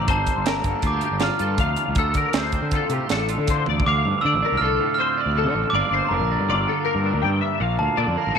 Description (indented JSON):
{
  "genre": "math rock and midwest emo",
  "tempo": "160 BPM",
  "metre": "5/4",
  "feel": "straight",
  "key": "D minor",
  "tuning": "A4 = 440 Hz",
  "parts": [
    { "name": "glockenspiel with soft plastic mallets", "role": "melody", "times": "0.0-8.4 s", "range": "A5 to F6", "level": "-25 LUFS", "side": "right 3 dB", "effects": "tape echo" },
    { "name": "twelve-string electric guitar", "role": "accompaniment", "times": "0.0-8.4 s", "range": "D2 to F4", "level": "-28 LUFS", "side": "right 10 dB", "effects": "none" },
    { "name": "twelve-string electric guitar", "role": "arpeggios", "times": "0.0-8.4 s", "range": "F4 to G5", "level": "-25 LUFS", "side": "left 13 dB", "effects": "ensemble chorus" },
    { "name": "fuzz fingered electric bass", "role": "bass", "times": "0.0-8.4 s", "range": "F1 to D3", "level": "-25 LUFS", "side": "left 1 dB", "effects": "overdrive" },
    { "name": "crisp fusion drum kit", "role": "drums", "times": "0.1-3.9 s", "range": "hi-hat, kick drum, snare drum, toms", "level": "-25 LUFS", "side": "right 2 dB", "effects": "none" }
  ],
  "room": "light reverb, small room ambience",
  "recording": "1960s-style stereo with parts hard left and right",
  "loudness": "-19 LUFS",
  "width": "side -7 dB against mid",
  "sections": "0.0-3.9 A section; 3.9-8.4 B section",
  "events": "drum fill 3.7",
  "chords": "0.1 Gm7; 2.0 Dm7; 5.7 Gm7; 7.6 Bbmaj7"
}